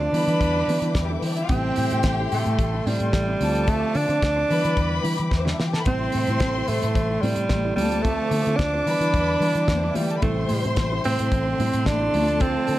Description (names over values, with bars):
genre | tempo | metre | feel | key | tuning
disco | 110 BPM | 4/4 | straight | unclear | A4 = 440 Hz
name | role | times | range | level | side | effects
breathy alto saxophone | melody | 0.0-12.8 s | G3 to D4 | -24 LUFS | right 2 dB | analog delay
mellow electric guitar | accompaniment | 0.0-12.7 s | G3 to D5 | -34 LUFS | right 4 dB | spring reverb
mellow tine electric piano | accompaniment | 0.0-12.8 s | C3 to F4 | -33 LUFS | left 3 dB | none
dark symphonic string section | sustained chords | 0.0-12.8 s | A4 to D6 | -34 LUFS | left 4 dB | none
fingered electric bass | bass | 0.0-12.8 s | A1 to E3 | -26 LUFS | equal | none
warm studio violin section | second line | 0.1-12.8 s | G3 to C6 | -30 LUFS | left 3 dB | none
damped 70s drum kit | drums | 0.1-12.8 s | hi-hat, kick drum, snare drum | -26 LUFS | equal | none
congas | percussion | 5.9-12.8 s | none | -33 LUFS | left 5 dB | none
room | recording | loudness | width
studio ambience | none | -20 LUFS | side -15 dB against mid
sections
0.0-12.8 A section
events
drum fill 5.3-5.9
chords
0.1 Em7; 1.5 Am7; 3.4 Dm7; 4.5 Em7; 5.9 Am7; 7.8 Dm7; 8.9 Em7; 10.2 Am7; 12.1 Dm7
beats
0.41 0.95 | 1.50 2.04 2.59 3.13 | 3.68 4.22 4.77 5.32 | 5.86 6.41 6.95 7.50 | 8.05 8.59 9.14 9.68 | 10.23 10.78 11.32 11.87 | 12.41